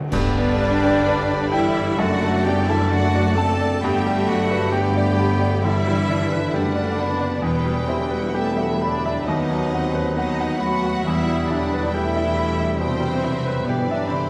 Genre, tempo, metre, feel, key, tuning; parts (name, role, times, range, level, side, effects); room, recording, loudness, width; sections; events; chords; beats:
classical, romantic movement for piano and orchestra; 66 BPM; 4/4; uneven beats, rubato; G major; A4 = 440 Hz
clear baby grand piano; melody; 0.0-14.3 s; D2 to B5; -27 LUFS; equal
rich symphonic viola section; accompaniment; 0.0-14.3 s; F#3 to A4; -30 LUFS; equal
clear studio violin section; melody; 0.1-14.3 s; B4 to G5; -38 LUFS; equal
flute section; second line; 0.1-14.3 s; B4 to A5; -34 LUFS; equal
rich symphonic violin section; second line; 0.1-14.3 s; B4 to A5; -36 LUFS; equal
warm clarinet; second line; 0.1-14.3 s; E3 to C4; -32 LUFS; equal
warm oboe; second line; 0.1-14.3 s; A5 to B5; -36 LUFS; equal
mellow bassoon; accompaniment; 0.1-14.2 s; D3 to G3; -34 LUFS; equal
mellow French horn section; sustained chords; 0.1-14.3 s; E3 to C4; -31 LUFS; equal
mellow tuba; bass; 0.1-14.3 s; E1 to D#2; -32 LUFS; equal
rich symphonic cello section; bass; 0.1-14.3 s; B2 to A3; -32 LUFS; equal
rich symphonic double bass section; bass; 0.1-14.3 s; G1 to G2; -30 LUFS; equal
clash cymbals and concert bass drum; percussion; 0.1-1.9 s; -34 LUFS; equal
wet scoring stage reverb, RT60 1.8 s; vinyl crackle; -21 LUFS; mono
0.1-14.3 A section
band accent 0.1-1.1
0.1 G; 2.0 D/F#; 3.8 G; 7.4 Em; 9.3 B/D#; 11.0 Em
| 0.11 1.05 1.98 2.89 | 3.81 4.72 5.63 6.53 | 7.44 8.35 9.26 10.14 | 11.02 11.90 12.78 13.66